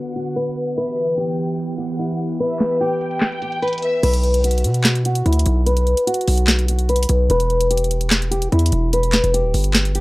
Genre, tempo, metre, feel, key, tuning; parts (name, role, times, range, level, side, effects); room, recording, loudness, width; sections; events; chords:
hip hop, trap; 147 BPM; 4/4; half-time; B minor; A4 = 441 Hz
nylon-string guitar; melody; 0.0-10.0 s; E4 to B4; -21 LUFS; left 1 dB; low-pass filter
warm studio violin section; second line; 0.0-4.0 s; E5 to G5; -31 LUFS; left 1 dB; analog delay
airy breathy pad; sustained chords; 0.0-4.0 s; D3 to G4; -26 LUFS; right 1 dB; chorus
trap drum kit; drums; 0.1-10.0 s; crash cymbal, handclaps, hi-hat, snare drum; -20 LUFS; equal; overdrive
hard-hitting 808-style bass; bass; 4.0-10.0 s; D1 to B2; -17 LUFS; equal
little or no reverb; dry, gritty hardware recording, low-pass filter; -16 LUFS; side -21 dB against mid
0.0-4.0 A section; 4.0-10.0 B section
filter sweep 0.0-4.0; filter sweep on nylon-string guitar 4.0-10.0
0.0 Bm; 0.8 Em; 4.0 B5; 7.3 Em